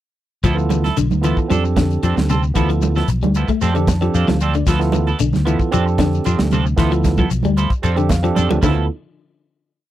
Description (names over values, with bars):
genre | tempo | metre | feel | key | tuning
afrobeat | 114 BPM | 4/4 | straight | D dorian | A4 = 439 Hz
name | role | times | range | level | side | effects
clean electric guitar | arpeggios | 0.4-8.8 s | C3 to A3 | -22 LUFS | left 6 dB | spring reverb
semi-hollow electric guitar | stabs | 0.4-8.9 s | F3 to A4 | -24 LUFS | right 6 dB | lush chorus
fingered electric bass | bass | 0.4-8.9 s | B1 to F2 | -18 LUFS | equal | none
tight funk drum kit | drums | 0.4-8.8 s | crash cymbal, hi-hat, kick drum, snare drum | -20 LUFS | equal | none
shekere | percussion | 0.4-8.8 s | none | -27 LUFS | left 6 dB | none
barky tine electric piano | accompaniment | 0.5-8.9 s | B3 to A5 | -23 LUFS | right 6 dB | overdrive
congas | percussion | 0.7-8.8 s | none | -23 LUFS | right 6 dB | none
room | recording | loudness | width
little or no reverb | dry, close 1970s-style studio recording | -15 LUFS | side -13 dB against mid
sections
0.4-8.9 groove; 8.9-9.9 final hit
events
tine electric piano fill 3.6-4.7, 7.8-8.9; drum fill 8.4-8.9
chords
0.4 Dm69; 1.5 F6; 2.6 Dm69; 3.6 F6; 4.7 Dm69; 5.7 F6; 6.8 Dm69; 7.8 F6; 8.6 Dm69; 8.9 N.C.